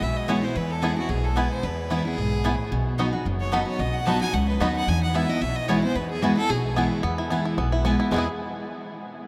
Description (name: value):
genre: bluegrass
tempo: 222 BPM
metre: 4/4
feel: swing 54% on 8ths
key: E major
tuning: A4 = 439 Hz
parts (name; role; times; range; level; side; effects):
- clear fiddle; melody; 0.0-8.3 s; F#4 to A5; -33 LUFS; equal; none
- picked steel-string acoustic guitar; accompaniment; 0.0-8.2 s; E2 to F#4; -29 LUFS; equal; none
- upright bass; bass; 0.0-8.3 s; F#1 to E2; -30 LUFS; equal; none
- bluegrass banjo; melody; 0.3-8.3 s; G#3 to G#4; -35 LUFS; equal; none
- mandolin; stabs; 0.3-8.2 s; B3 to B5; -33 LUFS; equal; none
room: wet huge ambient reverb, RT60 9.2 s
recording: in a vast, echoing space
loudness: -24 LUFS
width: mono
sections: 0.0-7.0 A section; 7.0-8.1 B section; 8.1-9.2 C section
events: none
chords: 0.0 E; 2.7 B; 4.9 E